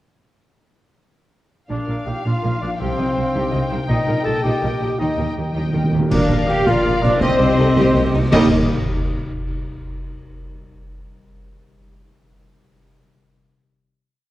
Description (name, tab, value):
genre	cinematic, heroic adventure film score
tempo	109 BPM (dotted quarters)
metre	6/8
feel	straight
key	Eb major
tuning	A4 = 440 Hz
part	rich symphonic violin section	melody	1.7-8.5 s	Eb5 to G5	-28 LUFS	left 2 dB	none
part	clear clarinet	second line	1.7-8.5 s	G4 to A5	-30 LUFS	left 1 dB	none
part	rich symphonic violin section	second line	1.7-8.5 s	G4 to F5	-29 LUFS	left 1 dB	none
part	warm cor anglais	second line	1.7-8.5 s	G3 to A4	-28 LUFS	right 1 dB	none
part	rich symphonic viola section	accompaniment	1.7-8.5 s	D4 to F5	-29 LUFS	equal	none
part	warm French horn section	sustained chords	1.7-8.5 s	C4 to A4	-25 LUFS	left 2 dB	none
part	concert harp	arpeggios	1.7-8.5 s	Bb2 to D6	-27 LUFS	left 4 dB	none
part	clear symphonic double bass section	bass	1.7-8.5 s	Bb1 to Eb2	-23 LUFS	right 2 dB	none
part	rich symphonic cello section	bass	1.7-8.5 s	Bb2 to G4	-25 LUFS	right 1 dB	none
part	timpani	percussion	5.0-6.1, 8.3-8.5 s	Eb3	-24 LUFS	right 1 dB	none
part	mellow hollow large flute ensemble	second line	6.1-8.5 s	Eb5 to F5	-30 LUFS	left 2 dB	none
part	mellow trumpet section	stabs	6.1-8.5 s	C5 to G5	-28 LUFS	equal	none
part	mellow tuba	bass	6.1-8.5 s	Bb1 to Eb2	-24 LUFS	right 2 dB	none
part	concert snare drum, clash cymbals and concert bass drum	drums	6.1-8.5 s	none	-26 LUFS	equal	none
part	clash cymbals, concert bass drum and cymbal swell	percussion	6.1-9.0 s	none	-27 LUFS	equal	none
room	moderate concert hall reverb, RT60 2.0 s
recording	worn, warbling old tape, cassette tape, warbly pitch drift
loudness	-16 LUFS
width	side -15 dB against mid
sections	1.7-6.1 theme; 6.1-8.3 outro; 8.3-9.4 final chord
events	timpani fill 5.0-6.1; band accent 6.1-6.5, 8.3-8.7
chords	1.7 Bb; 2.8 Cm; 3.9 Eb/Bb; 5.0 Eb; 6.1 Bb; 7.2 Cm; 8.3 Eb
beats	| 1.70 2.25 | 2.80 3.35 | 3.89 4.44 | 5.00 5.56 | 6.12 6.67 | 7.21 7.76 | 8.33 8.88